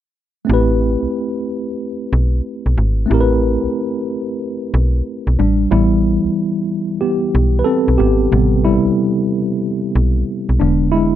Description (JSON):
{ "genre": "R&B, neo-soul", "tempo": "92 BPM", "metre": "4/4", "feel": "swing 63% on 16ths", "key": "A minor", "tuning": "A4 = 439 Hz", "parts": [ { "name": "tine electric piano", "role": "accompaniment", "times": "0.4-11.2 s", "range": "C3 to B4", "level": "-16 LUFS", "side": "equal", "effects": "overdrive, fast stereo tremolo" }, { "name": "slap-like FM bass", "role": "bass", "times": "0.5-11.2 s", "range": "E1 to B1", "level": "-16 LUFS", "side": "equal", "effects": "none" } ], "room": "little or no reverb", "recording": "dry, close 1970s-style studio recording", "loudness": "-14 LUFS", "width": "side -11 dB against mid", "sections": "0.5-5.7 A section; 5.7-11.2 B section", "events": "tine electric piano solo 5.7-11.2", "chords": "0.5 Am9; 5.4 A7sus4; 5.7 Am9; 10.6 E7" }